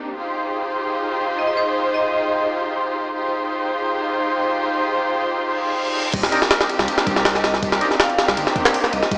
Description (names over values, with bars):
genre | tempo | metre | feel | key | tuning
drum and bass, jungle | 161 BPM | 4/4 | straight | C minor | A4 = 441 Hz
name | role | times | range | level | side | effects
rich studio string section | sustained chords | 0.0-9.2 s | Bb3 to C5 | -24 LUFS | equal | none
vibraphone with hard mallets | melody | 1.4-2.5, 7.4-9.1 s | C5 to F5 | -27 LUFS | equal | dub echo
reverse cymbal and sub drop | sound effects | 5.5-7.6 s | none | -31 LUFS | equal | none
soft dub sub bass | bass | 6.1-9.2 s | G1 to C2 | -32 LUFS | equal | none
jungle sampler-style drum kit | drums | 6.1-9.2 s | crash cymbal, kick drum, ride cymbal, snare drum | -20 LUFS | equal | none
overdriven tonewheel organ | stabs | 6.3-8.0 s | D4 to Bb4 | -28 LUFS | equal | none
room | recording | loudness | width
moderate lush hall reverb, RT60 2.0 s | small speaker sound, faint mains hum | -20 LUFS | mono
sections
0.0-6.1 A section; 6.1-9.2 B section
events
reverse cymbal 5.5-6.1; drop 6.1-9.2; impact 6.1-7.6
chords
0.2 Fm9; 6.1 Cm9